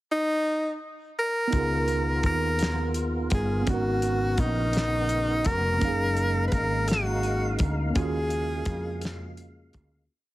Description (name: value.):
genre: slow six-eight R&B.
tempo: 56 BPM (dotted quarters).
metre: 6/8.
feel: straight.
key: unclear.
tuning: A4 = 440 Hz.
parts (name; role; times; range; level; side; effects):
breathy tenor saxophone; melody; 0.1-9.3 s; D#4 to B4; -27 LUFS; equal; none.
mellow tine electric piano; accompaniment; 1.5-10.1 s; A#3 to E#5; -31 LUFS; right 2 dB; slow stereo tremolo.
tonewheel organ; sustained chords; 1.5-10.1 s; C#3 to E#5; -36 LUFS; equal; overdrive, chorus vibrato, slow rotary speaker.
woody fretless electric bass; bass; 1.5-10.1 s; E#1 to E#2; -28 LUFS; equal; none.
cloth-damped thuddy drum kit; drums; 1.5-9.9 s; hi-hat, kick drum, snare drum; -29 LUFS; equal; none.
room: small room ambience.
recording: heavily compressed radio sound, multiband compression.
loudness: -24 LUFS.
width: side -17 dB against mid.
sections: 0.0-1.5 pickup bar; 1.5-10.1 chorus.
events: fade-out 8.0-10.1.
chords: 0.0 N.C.; 1.5 C#13; 3.7 G#m11; 5.8 F#maj13; 8.0 D#m11.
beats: 0.46 | 1.53 2.60 | 3.67 4.74 | 5.81 6.88 | 7.96 9.03.